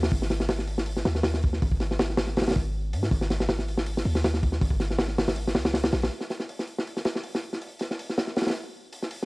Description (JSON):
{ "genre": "drum and bass, jungle", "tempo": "160 BPM", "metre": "4/4", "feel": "swing 53% on 16ths", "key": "unclear", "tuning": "A4 = 440 Hz", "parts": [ { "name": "warm 808-style bass", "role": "bass", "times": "0.0-6.1 s", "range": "G#1 to G#2", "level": "-28 LUFS", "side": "equal", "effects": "none" }, { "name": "crunchy breakbeat drum kit", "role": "drums", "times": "0.0-9.3 s", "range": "hi-hat, kick drum, snare drum", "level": "-26 LUFS", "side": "equal", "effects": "high-pass filter on kick, high-pass filter on hats, high-pass filter on snare, high-pass filter on room" } ], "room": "little or no reverb", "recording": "dry, gritty hardware recording, vinyl crackle", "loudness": "-24 LUFS", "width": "side -26 dB against mid", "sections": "0.0-6.1 A section; 6.1-9.3 B section", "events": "drop 0.0-6.1", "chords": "none", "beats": "| 0.12 0.49 0.87 1.24 | 1.62 1.99 2.37 2.74 | 3.12 3.49 3.87 4.24 | 4.62 4.99 5.37 5.74 | 6.12 6.49 6.87 7.24 | 7.62 7.99 8.37 8.74 | 9.12" }